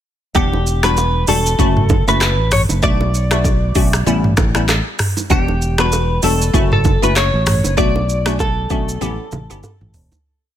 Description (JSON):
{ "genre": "afrobeats", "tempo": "97 BPM", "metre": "4/4", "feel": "swing 58% on 16ths", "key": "E dorian", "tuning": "A4 = 439 Hz", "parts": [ { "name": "glassy wavetable pluck", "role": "accompaniment", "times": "0.3-9.7 s", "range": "G3 to F#5", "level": "-22 LUFS", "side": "left 2 dB", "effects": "chorus" }, { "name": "direct-recorded clean electric guitar", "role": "melody", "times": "0.4-9.6 s", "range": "G4 to D5", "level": "-20 LUFS", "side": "left 1 dB", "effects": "lush chorus, ping-pong delay" }, { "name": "fingered electric bass", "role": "bass", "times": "0.4-10.1 s", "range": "E1 to B1", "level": "-18 LUFS", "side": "equal", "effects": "none" }, { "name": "afro-pop drum kit", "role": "drums", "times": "0.4-10.2 s", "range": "finger snaps, handclaps, hi-hat, kick drum, rim click, shaker, toms", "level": "-18 LUFS", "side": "equal", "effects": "none" }, { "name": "congas and bongos", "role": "percussion", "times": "0.4-10.2 s", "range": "none", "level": "-24 LUFS", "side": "right 5 dB", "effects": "none" } ], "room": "little or no reverb", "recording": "none", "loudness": "-13 LUFS", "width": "side -11 dB against mid", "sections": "0.4-10.2 chorus", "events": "fade-out 7.8-10.2; drum fill 9.0-10.2", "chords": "0.4 Em7; 1.6 F#m7; 2.8 Bm9; 4.1 A9; 5.3 Em7; 6.5 F#m7; 7.8 Bm9; 9.0 A9" }